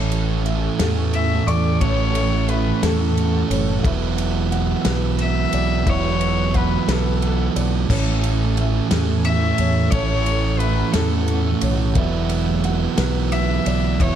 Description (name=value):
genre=post-rock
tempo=59 BPM (dotted quarters)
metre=6/8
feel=straight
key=A major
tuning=A4 = 440 Hz
part: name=soft additive organ-like pad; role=sustained chords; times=0.0-14.2 s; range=A4 to F#6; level=-34 LUFS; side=left 6 dB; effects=ensemble chorus, built-in reverb
part: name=felt-muted upright piano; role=arpeggios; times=0.0-14.2 s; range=A4 to C#6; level=-32 LUFS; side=left 1 dB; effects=analog delay
part: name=thick fuzz guitar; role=riff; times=0.0-14.2 s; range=A2 to B4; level=-21 LUFS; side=right 7 dB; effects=distortion
part: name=growling fingered electric bass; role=bass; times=0.0-14.2 s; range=E1 to E2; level=-22 LUFS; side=left 1 dB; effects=overdrive
part: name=loose indie drum kit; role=drums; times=0.1-14.2 s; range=crash cymbal, kick drum, ride cymbal, snare drum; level=-26 LUFS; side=left 1 dB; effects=none
part: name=rich cello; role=melody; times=1.1-14.2 s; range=A4 to E5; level=-26 LUFS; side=left 6 dB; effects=analog delay
room=studio ambience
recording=dark, warm production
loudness=-17 LUFS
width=side -10 dB against mid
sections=0.0-14.2 A section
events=none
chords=0.0 Amaj7; 3.8 Esus2; 7.9 Amaj7; 12.0 Esus2